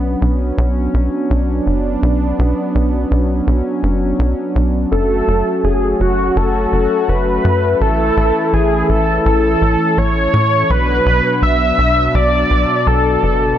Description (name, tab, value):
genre	synthwave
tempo	83 BPM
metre	4/4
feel	straight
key	unclear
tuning	A4 = 439 Hz
part	warm analog pad	sustained chords	0.0-13.6 s	B2 to F#4	-18 LUFS	left 1 dB	chorus
part	tight sequencer bass	bass	0.0-13.5 s	F#1 to A2	-16 LUFS	equal	tube saturation
part	wide unison lead	melody	4.9-13.6 s	F#4 to E5	-15 LUFS	equal	wide subtle chorus, cassette tape, tape echo
room	light reverb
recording	nothing above 10.9 kHz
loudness	-13 LUFS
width	side -10 dB against mid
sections	0.0-13.6 A section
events	none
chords	0.0 Bmadd9; 4.9 F#m; 7.8 A; 10.7 Bm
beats	0.58 1.30 | 2.02 2.75 3.47 4.19 | 4.92 5.64 6.36 7.08 | 7.81 8.53 9.25 9.98 | 10.70 11.42 12.14 12.87